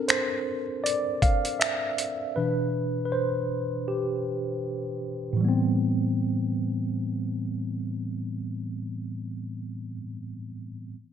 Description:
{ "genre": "contemporary R&B", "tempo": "79 BPM", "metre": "4/4", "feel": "swing 58% on 16ths", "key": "A minor", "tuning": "A4 = 440 Hz", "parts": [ { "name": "mellow tine electric piano", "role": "accompaniment", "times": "0.0-11.0 s", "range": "A2 to F5", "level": "-27 LUFS", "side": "equal", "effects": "medium stereo tremolo" }, { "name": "dusty soul sampler-style drum kit", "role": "drums", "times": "0.1-2.2 s", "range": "finger snaps, hi-hat, kick drum", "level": "-24 LUFS", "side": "equal", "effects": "gated reverb" } ], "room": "moderate plate reverb, RT60 1.7 s", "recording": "bright 1980s-style digital production", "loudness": "-26 LUFS", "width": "side -8 dB against mid", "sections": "0.0-5.4 A section; 5.4-8.4 B section", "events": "tine electric piano solo 0.0-5.4", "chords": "0.0 Bbmaj9; 2.4 Cmaj9; 5.4 Am9" }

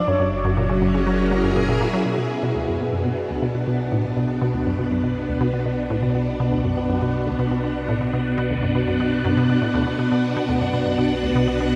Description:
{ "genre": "ambient, sequencer-driven space music", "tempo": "121 BPM", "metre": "4/4", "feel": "straight", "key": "B dorian", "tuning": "A4 = 445 Hz", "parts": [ { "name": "mellow horn-like synth lead", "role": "melody", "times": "0.0-0.8 s", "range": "C#5", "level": "-30 LUFS", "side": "equal", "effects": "phaser, subtle chorus, shimmer reverb, tape echo" }, { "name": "phased string machine", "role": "sustained chords", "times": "0.0-11.8 s", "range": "B2 to F#5", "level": "-24 LUFS", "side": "equal", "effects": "ensemble chorus, phaser, shimmer reverb" }, { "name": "round analog bass", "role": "bass", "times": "0.0-11.8 s", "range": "F#1 to B1", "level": "-35 LUFS", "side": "equal", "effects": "none" }, { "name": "resonant blip pluck", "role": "riff", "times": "0.1-11.6 s", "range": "D2 to F#3", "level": "-26 LUFS", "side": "equal", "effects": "chorus, cassette tape, tape echo" } ], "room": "wet huge ambient reverb, RT60 8.8 s", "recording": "none", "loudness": "-22 LUFS", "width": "mono", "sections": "0.0-2.1 A section; 2.1-11.8 B section", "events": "fade-in on analog synth bass 2.1-11.8", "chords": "0.1 F#7; 2.1 Bm" }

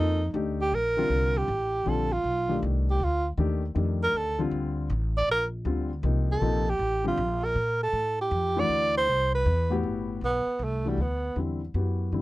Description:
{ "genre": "modal jazz", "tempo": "158 BPM", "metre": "3/4", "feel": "swing 66% on 8ths", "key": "Bb major", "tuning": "A4 = 439 Hz", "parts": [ { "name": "breathy tenor saxophone", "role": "melody", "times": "0.0-11.4 s", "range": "G3 to D5", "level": "-26 LUFS", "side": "right 2 dB", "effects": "none" }, { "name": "dark baby grand piano", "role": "accompaniment", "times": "0.0-12.2 s", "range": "A2 to A4", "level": "-30 LUFS", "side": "left 4 dB", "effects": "none" }, { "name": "upright bass", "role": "bass", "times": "0.0-12.2 s", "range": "G1 to Bb2", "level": "-28 LUFS", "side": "equal", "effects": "none" } ], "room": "little or no reverb", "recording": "dry, close 1970s-style studio recording", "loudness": "-24 LUFS", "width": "side -18 dB against mid", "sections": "0.7-9.8 A section; 9.8-12.2 B section", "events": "tenor saxophone solo 0.0-9.8", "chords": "0.0 Ebmaj9; 0.7 Bbmaj9; 8.7 D13; 9.8 Gmaj9" }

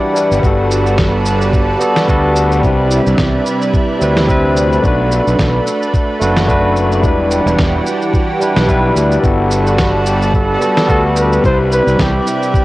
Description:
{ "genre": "sunset chillout", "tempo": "109 BPM", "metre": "4/4", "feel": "swing 57% on 16ths", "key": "G major", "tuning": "A4 = 436 Hz", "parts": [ { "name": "barky tine electric piano", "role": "accompaniment", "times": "0.0-12.6 s", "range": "G3 to D5", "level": "-16 LUFS", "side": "left 1 dB", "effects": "auto-pan, low-pass filter, cassette tape, analog delay" }, { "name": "lush unison pad", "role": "sustained chords", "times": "0.0-12.6 s", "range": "C3 to B4", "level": "-18 LUFS", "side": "right 1 dB", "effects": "chorus, cassette tape" }, { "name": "electronic cabasa and snare drum", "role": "drums", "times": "0.2-12.6 s", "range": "none", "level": "-20 LUFS", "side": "equal", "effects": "cassette tape" }, { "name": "fuzz fingered electric bass", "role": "bass", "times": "0.3-12.2 s", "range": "E1 to D2", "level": "-16 LUFS", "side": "equal", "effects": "overdrive, tube saturation" }, { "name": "electronic kick drum", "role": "drums", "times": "0.4-12.6 s", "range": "none", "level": "-16 LUFS", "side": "equal", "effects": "cassette tape" }, { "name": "warm flugelhorn", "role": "melody", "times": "9.2-12.6 s", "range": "E4 to C5", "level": "-18 LUFS", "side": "equal", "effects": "cassette tape, analog delay" } ], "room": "moderate spring reverb, RT60 1.4 s", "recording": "home recording on cassette", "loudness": "-11 LUFS", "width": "side -18 dB against mid", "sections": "0.0-12.6 A section", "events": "none", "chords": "0.4 Gmaj9; 2.6 Cmaj7; 4.8 Bm7; 7.0 Em7; 9.2 Gmaj9; 11.4 Cmaj7" }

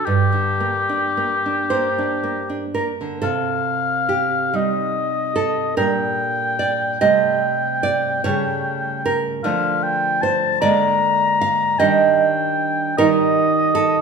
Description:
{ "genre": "romantic duo for oboe and classical guitar", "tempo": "35-52 BPM (dotted quarters)", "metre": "6/8", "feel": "rubato", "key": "G minor", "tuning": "A4 = 440 Hz", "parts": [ { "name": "warm oboe", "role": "melody", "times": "0.0-14.0 s", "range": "G4 to Bb5", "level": "-20 LUFS", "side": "left 3 dB", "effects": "none" }, { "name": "nylon-string guitar", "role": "accompaniment", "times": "0.0-14.0 s", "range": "G2 to F5", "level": "-19 LUFS", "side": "right 4 dB", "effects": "none" } ], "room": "wet large studio reverb, RT60 1.2 s", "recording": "band playing live in one room", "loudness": "-17 LUFS", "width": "side -5 dB against mid", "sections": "0.0-3.2 A section; 3.2-14.0 B section", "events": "none", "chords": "0.1 Gm; 3.2 Cm; 5.8 Gm/Bb; 7.0 Am7b5/C; 8.2 A7/C#; 9.4 Dm; 10.6 Bb7/D; 11.8 Ebmaj7; 13.0 Eb" }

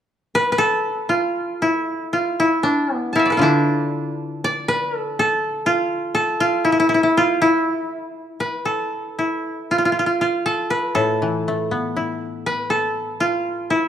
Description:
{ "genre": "japanese traditional, Japanese chamber music", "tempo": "60 BPM", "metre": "2/4", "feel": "rubato", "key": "unclear", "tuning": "A4 = 436 Hz", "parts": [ { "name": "koto", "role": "melody", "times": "0.3-13.9 s", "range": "D4 to A5", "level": "-18 LUFS", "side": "equal", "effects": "none" }, { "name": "koto", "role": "accompaniment", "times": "3.4-6.4, 11.0-13.9 s", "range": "A2 to E4", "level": "-23 LUFS", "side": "left 2 dB", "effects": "none" } ], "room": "moderate recital hall reverb, RT60 1.7 s", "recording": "dark, warm production", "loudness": "-18 LUFS", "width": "side -9 dB against mid", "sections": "0.0-1.3 A section; 1.3-13.9 B section", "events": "none", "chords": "none" }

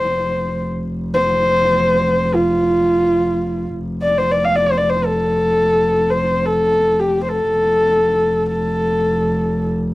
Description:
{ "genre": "mongolian traditional, Mongolian folk", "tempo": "free time", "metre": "none", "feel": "none", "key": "F gong mode", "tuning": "A4 = 438 Hz", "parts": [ { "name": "dark horsehead fiddle", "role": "melody", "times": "0.0-9.7 s", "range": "F4 to F5", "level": "-16 LUFS", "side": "left 1 dB", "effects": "none" }, { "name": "rich double bass", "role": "drone", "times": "0.0-9.9 s", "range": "F1", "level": "-22 LUFS", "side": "equal", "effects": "none" } ], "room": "light reverb, studio reverb", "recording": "dry, close 1970s-style studio recording", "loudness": "-15 LUFS", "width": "side -18 dB against mid", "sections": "0.0-3.8 A section; 3.8-9.9 A section", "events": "none", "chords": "none" }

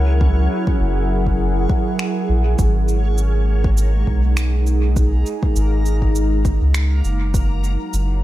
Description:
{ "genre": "ambient dub", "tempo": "101 BPM", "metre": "4/4", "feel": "swing 56% on 16ths", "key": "unclear", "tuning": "A4 = 441 Hz", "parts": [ { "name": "warbly tape-like pad", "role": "sustained chords", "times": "0.0-8.2 s", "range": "F#3 to F#5", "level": "-23 LUFS", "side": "right 1 dB", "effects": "chorus, built-in reverb, vintage 12-bit sampler grit" }, { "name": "soft dub sub bass", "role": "bass", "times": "0.0-8.2 s", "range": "F#1 to C#2", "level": "-17 LUFS", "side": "equal", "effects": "none" }, { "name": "backwards swelling texture", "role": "texture", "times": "0.0-8.2 s", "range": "A#3 to A#5", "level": "-33 LUFS", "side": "left 1 dB", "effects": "built-in reverb" }, { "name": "electronic kick drum", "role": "drums", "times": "0.2-7.5 s", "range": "none", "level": "-20 LUFS", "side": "equal", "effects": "studio reverb" }, { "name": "electronic finger snaps and cabasa", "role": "drums", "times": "2.0-8.1 s", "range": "none", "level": "-30 LUFS", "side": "right 1 dB", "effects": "overdrive, studio reverb, dub echo" } ], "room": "digital ambience", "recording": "none", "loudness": "-16 LUFS", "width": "side -15 dB against mid", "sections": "0.0-8.2 A section", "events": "none", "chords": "0.0 F#7; 2.6 G#m9; 7.3 F#7" }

